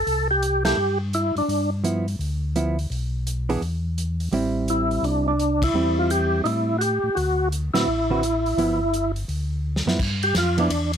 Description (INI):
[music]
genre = soul jazz organ trio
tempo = 169 BPM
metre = 4/4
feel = swing 64% on 8ths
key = G mixolydian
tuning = A4 = 441 Hz
[part]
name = overdriven tonewheel organ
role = melody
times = 0.0-1.7, 4.7-10.9 s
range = D4 to A4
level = -22 LUFS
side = equal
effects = slow rotary speaker, chorus vibrato
[part]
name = mellow tonewheel organ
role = bass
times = 0.0-11.0 s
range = G1 to A2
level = -25 LUFS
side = left 1 dB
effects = chorus vibrato
[part]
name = warm soul drum kit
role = drums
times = 0.1-11.0 s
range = crash cymbal, hi-hat, kick drum, ride cymbal, snare drum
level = -31 LUFS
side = equal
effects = none
[part]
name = hollow-body jazz guitar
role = accompaniment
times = 0.6-10.7 s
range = D3 to B4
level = -24 LUFS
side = right 3 dB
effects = none
[sound]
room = little or no reverb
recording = close, detailed microphones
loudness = -20 LUFS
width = side -8 dB against mid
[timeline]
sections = 0.0-10.0 A section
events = band accent 0.6, 5.6, 7.7; drum fill 9.6-10.0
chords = 0.0 C6; 1.5 G6; 2.9 Bmadd11; 3.6 N.C.; 4.3 Am7; 7.2 D13; 8.6 G6; 9.3 D69; 10.0 G7(no3)